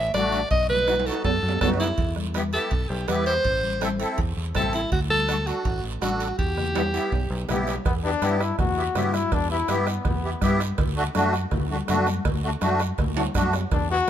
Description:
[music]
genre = latin, cumbia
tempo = 164 BPM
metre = 4/4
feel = straight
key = E minor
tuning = A4 = 440 Hz
[part]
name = edgy alto saxophone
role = melody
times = 0.0-7.4 s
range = E4 to E5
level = -25 LUFS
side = equal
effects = none
[part]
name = fingered electric bass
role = bass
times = 0.0-14.1 s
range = A1 to G2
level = -28 LUFS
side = equal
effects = none
[part]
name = musette accordion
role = accompaniment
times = 0.1-14.1 s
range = G3 to A4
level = -28 LUFS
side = equal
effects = none
[part]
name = bombo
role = percussion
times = 0.1-13.9 s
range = none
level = -28 LUFS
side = right 2 dB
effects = none
[part]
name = congas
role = percussion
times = 0.1-14.1 s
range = none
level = -32 LUFS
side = left 5 dB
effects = none
[part]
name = guiro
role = percussion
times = 0.1-14.1 s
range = none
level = -39 LUFS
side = right 6 dB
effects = none
[part]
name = timbales and cowbell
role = percussion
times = 0.1-14.1 s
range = none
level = -34 LUFS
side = right 7 dB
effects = none
[part]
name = bright trombone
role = second line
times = 7.9-10.6, 13.7-14.1 s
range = B3 to F#4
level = -26 LUFS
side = left 5 dB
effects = none
[sound]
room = light reverb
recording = minimal, uncompressed stereo recording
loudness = -21 LUFS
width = side -10 dB against mid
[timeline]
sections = 0.0-7.9 A section; 7.9-14.1 B section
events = drum fill 0.9-2.0, 6.8-7.9, 13.2-13.7; trombone solo 7.9-14.1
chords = 0.0 D; 0.5 B7; 2.0 Em; 3.4 Am; 4.9 D; 6.4 Em; 10.8 D

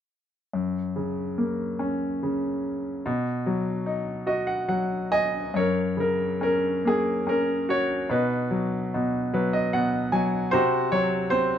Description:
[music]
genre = classical, lyrical solo piano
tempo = 72 BPM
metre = 3/4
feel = uneven beats, rubato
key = F# major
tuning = A4 = 440 Hz
[part]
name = bright grand piano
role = solo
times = 0.5-11.6 s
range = F#2 to G#5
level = -23 LUFS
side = equal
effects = none
[sound]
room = light reverb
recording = dark, warm production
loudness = -23 LUFS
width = side -9 dB against mid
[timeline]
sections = 0.5-5.6 A section; 5.6-11.6 B section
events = grand piano fill 3.9-5.6, 8.9-10.5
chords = 0.5 F#; 3.1 B; 5.6 F#; 8.1 B; 10.5 G#7/B# (rootless)

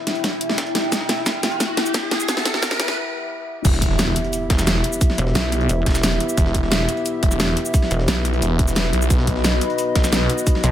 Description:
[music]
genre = dark technical drum and bass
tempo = 176 BPM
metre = 4/4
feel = straight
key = E harmonic minor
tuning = A4 = 440 Hz
[part]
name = dark analog pad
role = sustained chords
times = 0.0-10.7 s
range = B3 to E5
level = -26 LUFS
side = left 1 dB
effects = chorus, vintage 12-bit sampler grit, sidechain pumping
[part]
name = riser and impact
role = sound effects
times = 0.1-5.0 s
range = none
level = -27 LUFS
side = equal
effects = none
[part]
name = deep dark ambient pad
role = texture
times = 0.0-10.7 s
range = D#4 to G5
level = -28 LUFS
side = left 2 dB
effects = chorus, built-in reverb, sidechain pumping
[part]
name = breakbeat sampler-style drum kit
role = drums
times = 0.1-10.7 s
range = hi-hat, snare drum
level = -31 LUFS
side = equal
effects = none
[part]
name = dubstep drum kit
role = drums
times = 0.1-10.7 s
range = cabasa, crash cymbal, hi-hat, snare drum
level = -22 LUFS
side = equal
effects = none
[part]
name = electronic kick drum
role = drums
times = 0.2-10.5 s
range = none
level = -18 LUFS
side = equal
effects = high-pass filter on kick
[part]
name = snarling distorted saw bass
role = bass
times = 3.6-10.3 s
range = E1 to B1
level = -21 LUFS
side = equal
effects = distortion, sidechain pumping
[part]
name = pulsing pluck wobble bass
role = bass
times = 5.2-5.8, 7.9-8.1, 10.6-10.7 s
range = E1 to B1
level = -19 LUFS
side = equal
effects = chorus
[sound]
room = light reverb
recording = high-pass filter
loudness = -17 LUFS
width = side -11 dB against mid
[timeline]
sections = 0.0-3.6 A section; 3.6-10.7 B section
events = build-up 0.0-3.6; drum fill 0.0-3.0; riser 0.1-3.0; filter sweep on analog synth pad 0.0-3.6; break 3.0-3.6; drop 3.6-10.7; impact 3.6-5.0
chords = 0.0 Em; 9.1 B

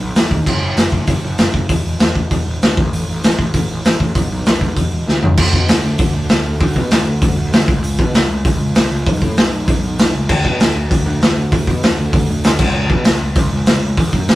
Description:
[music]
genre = punk rock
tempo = 195 BPM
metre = 4/4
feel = straight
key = unclear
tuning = A4 = 441 Hz
[part]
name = fuzz picked electric bass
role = bass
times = 0.0-14.4 s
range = E1 to B2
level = -19 LUFS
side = equal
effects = overdrive
[part]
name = raw garage drum kit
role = drums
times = 0.2-14.4 s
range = crash cymbal, hi-hat, kick drum, snare drum, toms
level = -14 LUFS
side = equal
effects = none
[sound]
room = light reverb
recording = rough rehearsal-room recording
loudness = -13 LUFS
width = side -16 dB against mid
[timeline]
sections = 0.0-5.4 A section; 5.4-14.4 B section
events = drum fill 5.1-5.4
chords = none

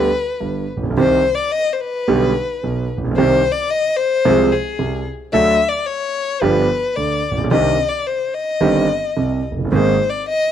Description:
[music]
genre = tango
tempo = 109 BPM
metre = 4/4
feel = rubato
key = C minor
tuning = A4 = 440 Hz
[part]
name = warm violin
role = second line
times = 0.0-10.5 s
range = Ab4 to E5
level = -18 LUFS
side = left 5 dB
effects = none
[part]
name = warm concert grand piano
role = accompaniment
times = 0.0-10.0 s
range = F1 to A4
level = -17 LUFS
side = right 3 dB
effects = none
[sound]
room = little or no reverb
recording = dry, close 1970s-style studio recording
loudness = -15 LUFS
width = side -9 dB against mid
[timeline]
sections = 0.0-10.5 A section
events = violin solo 0.0-10.5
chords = 0.0 G; 1.0 Cm; 2.1 G/B; 3.2 Cm; 4.2 Fm/C; 5.3 D; 6.4 G7; 7.5 Cmadd9; 9.7 Abadd9

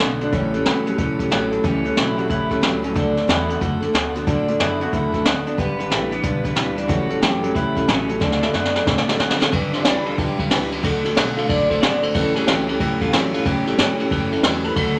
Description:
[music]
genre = rockabilly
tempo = 183 BPM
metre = 4/4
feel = swing 64% on 8ths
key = unclear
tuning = A4 = 441 Hz
[part]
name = picked steel-string acoustic guitar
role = accompaniment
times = 0.0-15.0 s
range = A2 to B4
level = -26 LUFS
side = equal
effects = none
[part]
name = electric guitar through a small old amp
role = riff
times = 0.0-15.0 s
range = G2 to B3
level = -28 LUFS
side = equal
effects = none
[part]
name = upright bass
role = bass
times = 0.0-15.0 s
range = F#1 to D3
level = -35 LUFS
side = equal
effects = none
[part]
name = jazz brush drum kit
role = drums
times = 0.0-14.9 s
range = hi-hat, kick drum, ride cymbal, snare drum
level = -23 LUFS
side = equal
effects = none
[part]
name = electric guitar through a small old amp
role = melody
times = 0.2-15.0 s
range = A3 to F5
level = -28 LUFS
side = equal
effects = spring reverb
[sound]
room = moderate large studio reverb, RT60 1.2 s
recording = none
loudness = -20 LUFS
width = mono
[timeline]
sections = 0.0-9.5 A section; 9.5-15.0 B section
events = drum fill 8.2-9.5; clean electric guitar solo 9.5-15.0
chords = 0.3 A7; 3.0 D; 5.6 G; 6.9 A7; 8.2 D; 9.5 G; 10.8 D; 12.1 A7

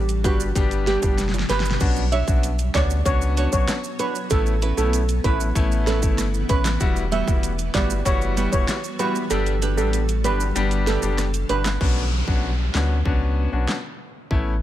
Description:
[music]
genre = dancehall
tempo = 96 BPM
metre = 4/4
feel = straight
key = B minor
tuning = A4 = 439 Hz
[part]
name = granular cloud pad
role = sustained chords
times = 0.0-11.8 s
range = B2 to C#5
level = -32 LUFS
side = equal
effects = built-in reverb, sidechain pumping
[part]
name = sub bass with octave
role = bass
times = 0.0-14.6 s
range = E1 to D2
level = -23 LUFS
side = equal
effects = none
[part]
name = pop drum kit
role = drums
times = 0.1-14.5 s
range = crash cymbal, handclaps, hi-hat, kick drum, rim click, snare drum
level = -23 LUFS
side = equal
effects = none
[part]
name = maracas and timbales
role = percussion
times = 0.1-11.8 s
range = none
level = -35 LUFS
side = right 9 dB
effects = none
[part]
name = steel pan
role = melody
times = 0.2-11.6 s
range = F#4 to E5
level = -26 LUFS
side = right 4 dB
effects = digital delay
[part]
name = clear concert grand piano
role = accompaniment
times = 0.2-14.5 s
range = G3 to G4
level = -28 LUFS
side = left 4 dB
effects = none
[part]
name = nylon-string guitar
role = arpeggios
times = 0.2-11.7 s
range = G3 to C#5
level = -30 LUFS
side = right 6 dB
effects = digital delay
[part]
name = downlifter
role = sound effects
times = 11.8-14.6 s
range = none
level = -33 LUFS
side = right 1 dB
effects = none
[sound]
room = studio reverb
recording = none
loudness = -19 LUFS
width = side -13 dB against mid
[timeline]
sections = 0.0-11.8 A section; 11.8-14.6 B section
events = drum fill 1.2-1.8; kick muted 9.3-11.8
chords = 0.0 G; 1.8 Bmadd9; 4.3 Aadd9; 6.8 Emadd9; 9.3 G; 11.8 Bmadd9

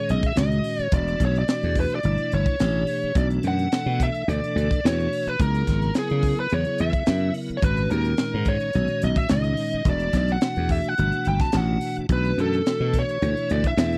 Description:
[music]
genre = electric jazz fusion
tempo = 107 BPM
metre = 4/4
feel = straight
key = unclear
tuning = A4 = 443 Hz
[part]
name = smooth overdriven lead guitar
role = melody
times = 0.0-14.0 s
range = G#4 to A5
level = -29 LUFS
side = equal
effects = none
[part]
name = tonewheel organ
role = accompaniment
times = 0.0-14.0 s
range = A#2 to A#4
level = -31 LUFS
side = equal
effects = chorus vibrato, slow rotary speaker
[part]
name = slap bass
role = bass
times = 0.1-14.0 s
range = E1 to C#3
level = -25 LUFS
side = equal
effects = none
[part]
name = tight funk drum kit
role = drums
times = 0.1-14.0 s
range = hi-hat, kick drum, snare drum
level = -26 LUFS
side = equal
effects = none
[sound]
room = little or no reverb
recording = dry, close 1970s-style studio recording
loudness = -23 LUFS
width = mono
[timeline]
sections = 0.0-14.0 A section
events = none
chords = 0.0 G#7sus2; 0.9 Em9; 3.2 Bm7; 5.4 C#m7; 7.6 G#7sus2; 9.9 E7sus2; 12.1 Bm9

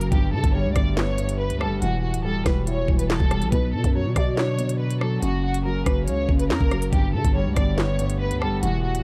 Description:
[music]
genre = hip hop, drill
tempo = 141 BPM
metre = 4/4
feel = half-time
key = unclear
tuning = A4 = 441 Hz
[part]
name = warm studio violin section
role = melody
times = 0.0-9.0 s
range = F#4 to D5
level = -31 LUFS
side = equal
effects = low-pass filter
[part]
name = dark grand piano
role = accompaniment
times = 0.0-9.0 s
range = F#2 to E4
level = -30 LUFS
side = equal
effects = low-pass filter
[part]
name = warbly tape-like pad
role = sustained chords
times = 0.0-9.0 s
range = C#3 to G4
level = -38 LUFS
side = equal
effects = none
[part]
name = growling 808-style bass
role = bass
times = 0.0-9.0 s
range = D1 to D3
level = -28 LUFS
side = equal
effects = none
[part]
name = drill drum kit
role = drums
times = 0.0-9.0 s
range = handclaps, hi-hat, kick drum, rim click, snare drum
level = -25 LUFS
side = equal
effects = none
[sound]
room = digital ambience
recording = dark, warm production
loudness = -23 LUFS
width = mono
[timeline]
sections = 0.0-9.0 A section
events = none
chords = 0.1 Gadd9; 1.8 Emadd9; 3.5 Bm; 5.2 F#; 6.9 Gadd9

